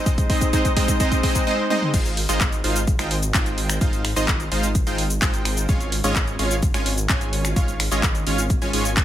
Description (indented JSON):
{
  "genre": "EDM, festival progressive house",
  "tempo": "128 BPM",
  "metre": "4/4",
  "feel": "straight",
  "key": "unclear",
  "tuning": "A4 = 440 Hz",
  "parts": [
    { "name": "supersaw stab", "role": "riff", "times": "0.0-8.9 s", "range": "Ab3 to Ab5", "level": "-24 LUFS", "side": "right 1 dB", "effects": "sidechain pumping, digital delay" },
    { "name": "big-room dance drum kit", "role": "drums", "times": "0.1-9.0 s", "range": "crash cymbal, finger snaps, handclaps, hi-hat, shaker, toms", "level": "-25 LUFS", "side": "left 1 dB", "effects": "overdrive, studio reverb" },
    { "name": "electronic kick drum", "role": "drums", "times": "0.1-9.0 s", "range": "none", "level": "-21 LUFS", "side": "equal", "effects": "studio reverb" },
    { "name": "wide detuned saw bass", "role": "bass", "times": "1.9-9.0 s", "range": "Ab1", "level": "-25 LUFS", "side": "equal", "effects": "chorus, sidechain pumping" }
  ],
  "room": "light reverb, digital ambience",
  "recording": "none",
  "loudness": "-18 LUFS",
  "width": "side -12 dB against mid",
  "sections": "0.0-1.9 A section; 1.9-9.0 B section",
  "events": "build-up 0.0-1.9; drum fill 0.0-1.5, 1.7; drop 1.9-9.0",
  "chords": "0.0 Ab; 1.9 Fm7/Ab; 5.7 Db/Ab"
}